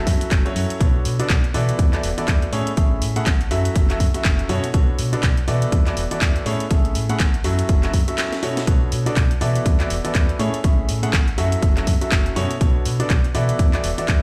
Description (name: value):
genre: piano house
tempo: 122 BPM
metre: 4/4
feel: swing 58% on 16ths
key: B dorian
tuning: A4 = 438 Hz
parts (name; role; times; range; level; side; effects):
- clear baby grand piano; riff; 0.0-14.2 s; A2 to F#5; -26 LUFS; equal; sidechain pumping, tape echo
- solid FM bass; bass; 0.1-14.2 s; E1 to B2; -25 LUFS; equal; sidechain pumping
- electronic kick drum; drums; 0.1-14.2 s; none; -20 LUFS; equal; none
- house drum kit; drums; 0.1-14.2 s; handclaps, hi-hat, snare drum; -30 LUFS; equal; none
room: digital ambience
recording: played on a big sound system in a bare room, stone room reverb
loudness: -19 LUFS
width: mono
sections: 0.0-14.2 A section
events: break 8.2-8.7; drum fill 8.2-8.7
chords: 0.0 F#m7; 0.8 Bm9; 1.8 E9sus4; 2.5 Amaj7; 3.5 F#m7; 4.7 Bm9; 5.7 E9sus4; 6.5 Amaj7; 7.4 F#m7; 8.7 Bm9; 9.7 E9sus4; 10.4 Amaj7; 11.4 F#m7; 12.6 Bm9; 13.6 E9sus4